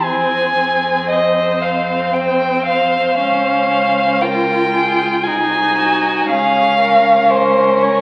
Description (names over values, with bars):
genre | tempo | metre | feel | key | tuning
classical, slow romantic movement for string quartet | 58 BPM | 3/4 | rubato | unclear | A4 = 440 Hz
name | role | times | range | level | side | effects
rich violin | melody | 0.0-8.0 s | C5 to Ab5 | -17 LUFS | equal | none
rich violin | second line | 0.0-8.0 s | Gb4 to C5 | -24 LUFS | equal | none
warm viola | accompaniment | 0.0-8.0 s | C4 to F4 | -21 LUFS | equal | none
rich cello | bass | 0.0-8.0 s | C2 to F2 | -29 LUFS | equal | none
room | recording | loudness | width
wet recital hall reverb, RT60 1.6 s | very old 78 rpm record, vinyl crackle | -15 LUFS | mono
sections
0.0-8.0 A section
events
none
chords
0.1 Fm; 3.2 Db; 5.2 Ab7/C; 6.3 Db